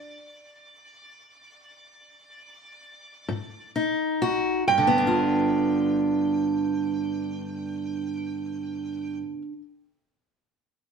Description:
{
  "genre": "acoustic country blues, solo or duo",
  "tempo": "42-50 BPM (dotted quarters)",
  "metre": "12/8",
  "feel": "straight",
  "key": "G mixolydian",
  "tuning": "A4 = 442 Hz",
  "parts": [
    { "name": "lap resonator guitar", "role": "melody", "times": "0.0-9.2 s", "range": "D5 to G5", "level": "-28 LUFS", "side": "right 7 dB", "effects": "slapback echo" },
    { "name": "fingerpicked steel-string acoustic guitar", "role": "accompaniment", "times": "0.0-9.6 s", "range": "G2 to F#4", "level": "-24 LUFS", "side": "right 1 dB", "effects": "none" }
  ],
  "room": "wet studio reverb, RT60 0.8 s",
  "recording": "heard from further back in the room",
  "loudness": "-23 LUFS",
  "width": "side -6 dB against mid",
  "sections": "0.0-4.7 A section; 4.7-10.4 B section",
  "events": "slowing down 0.0-4.7; stop 0.0-3.3",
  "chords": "0.0 N.C.; 3.3 Ab5; 4.7 G7",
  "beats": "0.73 1.98 3.28 | 4.67 6.11 7.55 8.99"
}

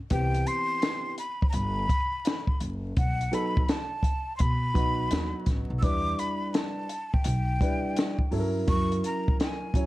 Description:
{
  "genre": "hip hop, jazz-hop",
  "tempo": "84 BPM",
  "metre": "4/4",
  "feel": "swing 66% on 16ths",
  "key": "B phrygian",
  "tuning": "A4 = 441 Hz",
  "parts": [
    { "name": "breathy mellow jazz flute", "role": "melody", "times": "0.1-9.9 s", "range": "F#5 to E6", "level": "-31 LUFS", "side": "left 1 dB", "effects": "slapback echo" },
    { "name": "dark grand piano", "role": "accompaniment", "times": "0.1-9.9 s", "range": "E3 to C#5", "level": "-31 LUFS", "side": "equal", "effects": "none" },
    { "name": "upright bass", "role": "bass", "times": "0.1-9.0 s", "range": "F#1 to B2", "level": "-30 LUFS", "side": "equal", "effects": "none" },
    { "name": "compact cocktail drum kit", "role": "drums", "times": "0.1-9.9 s", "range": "hi-hat, kick drum, snare drum", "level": "-27 LUFS", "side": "equal", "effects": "none" }
  ],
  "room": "little or no reverb",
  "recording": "vinyl crackle",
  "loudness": "-25 LUFS",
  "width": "side -17 dB against mid",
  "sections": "0.0-9.9 A section",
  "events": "none",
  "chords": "0.1 Cmaj7; 3.0 B7; 5.8 Em7; 8.7 F#7",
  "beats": "| 0.11 0.82 1.53 2.25 | 2.96 3.68 4.39 5.11 | 5.82 6.54 7.25 7.96 | 8.68 9.39"
}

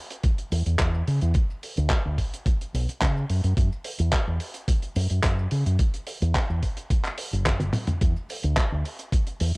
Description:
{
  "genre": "nu-disco, nu disco",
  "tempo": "108 BPM",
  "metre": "4/4",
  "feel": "straight",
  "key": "unclear",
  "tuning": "A4 = 442 Hz",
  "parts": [
    { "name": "damped 70s drum kit", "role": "drums", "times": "0.1-9.6 s", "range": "handclaps, hi-hat, shaker, toms", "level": "-30 LUFS", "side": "equal", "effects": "studio reverb, cassette tape" },
    { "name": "electronic kick drum", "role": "drums", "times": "0.2-9.2 s", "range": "none", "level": "-23 LUFS", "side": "equal", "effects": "studio reverb, cassette tape" },
    { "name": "fingered electric bass with an envelope filter", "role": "bass", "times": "0.5-9.6 s", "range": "F#1 to C#3", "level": "-23 LUFS", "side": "equal", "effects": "sidechain pumping" }
  ],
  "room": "little or no reverb",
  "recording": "home recording on cassette",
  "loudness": "-22 LUFS",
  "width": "side -29 dB against mid",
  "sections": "0.0-9.6 A section",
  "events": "drum fill 7.5-8.0",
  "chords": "none",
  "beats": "0.24 0.79 | 1.35 1.90 2.46 3.01 | 3.57 4.12 4.68 5.24 | 5.79 6.35 6.90 7.46 | 8.01 8.57 9.12"
}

